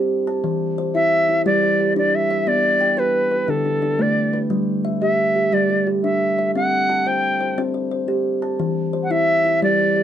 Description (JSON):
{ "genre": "southern african traditional, mbira-style interlocking cycle", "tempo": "118 BPM (dotted quarters)", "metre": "12/8", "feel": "straight", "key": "G major", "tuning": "A4 = 441 Hz", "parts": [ { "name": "kalimba", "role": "arpeggios", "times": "0.0-10.0 s", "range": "D3 to A5", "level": "-20 LUFS", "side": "equal", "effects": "none" }, { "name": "reedy Native American-style cedar flute", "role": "melody", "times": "0.9-10.0 s", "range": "A4 to G5", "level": "-18 LUFS", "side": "equal", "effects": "none" } ], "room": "light reverb", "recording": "dark, warm production", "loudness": "-17 LUFS", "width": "side -10 dB against mid", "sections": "0.0-10.0 A section", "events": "none", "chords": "0.4 Am/E; 1.5 G5; 2.5 Bm; 3.5 D5; 4.5 G5; 6.6 C5; 8.6 Am/E", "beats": "| 0.44 0.95 1.46 1.96 | 2.47 2.98 3.49 4.00 | 4.51 5.02 5.53 6.04 | 6.55 7.06 7.58 8.09 | 8.60 9.11 9.62" }